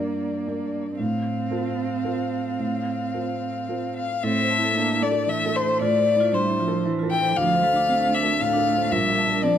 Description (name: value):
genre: neoclassical piano and strings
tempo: 115 BPM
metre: 3/4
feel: rubato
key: F major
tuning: A4 = 440 Hz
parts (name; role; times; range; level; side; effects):
- rich violin; melody; 0.0-9.6 s; C5 to G5; -23 LUFS; left 4 dB; none
- clear cello; second line; 0.0-9.6 s; E3 to C4; -28 LUFS; right 7 dB; none
- felt-muted upright piano; accompaniment; 0.0-9.6 s; Bb1 to D5; -27 LUFS; right 1 dB; none
- vibraphone with medium hard mallets; arpeggios; 4.2-9.6 s; D4 to A5; -32 LUFS; right 4 dB; slapback echo
room: moderate large studio reverb, RT60 1.1 s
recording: dark, warm production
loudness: -21 LUFS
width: side -9 dB against mid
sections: 0.0-4.2 A section; 4.2-9.6 B section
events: none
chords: 0.0 Gm; 1.0 F/A; 4.2 Am; 5.8 Fmaj7/A; 7.4 Dm7; 8.9 Bbmaj7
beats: 0.48 | 1.00 1.52 2.05 | 2.59 3.14 3.69 | 4.23 4.76 5.28 | 5.81 6.33 6.85 | 7.37 7.88 8.40 | 8.91 9.43